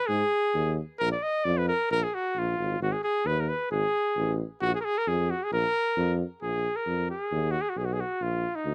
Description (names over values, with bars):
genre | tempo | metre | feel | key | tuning
balkan folk | 133 BPM | 2/4 | straight | Bb phrygian dominant | A4 = 440 Hz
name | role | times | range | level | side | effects
clear cornet | melody | 0.0-8.7 s | Eb4 to Eb5 | -29 LUFS | equal | none
warm tuba | bass | 0.1-8.7 s | Ab1 to Ab2 | -32 LUFS | equal | none
room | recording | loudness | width
small room ambience | dry, close 1970s-style studio recording | -28 LUFS | mono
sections
0.0-6.4 A section; 6.4-8.7 B section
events
cornet solo 6.4-8.7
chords
0.0 Ab5; 1.0 Bb5; 2.8 Ab5; 4.6 Bb5; 7.3 B6; 8.2 Bb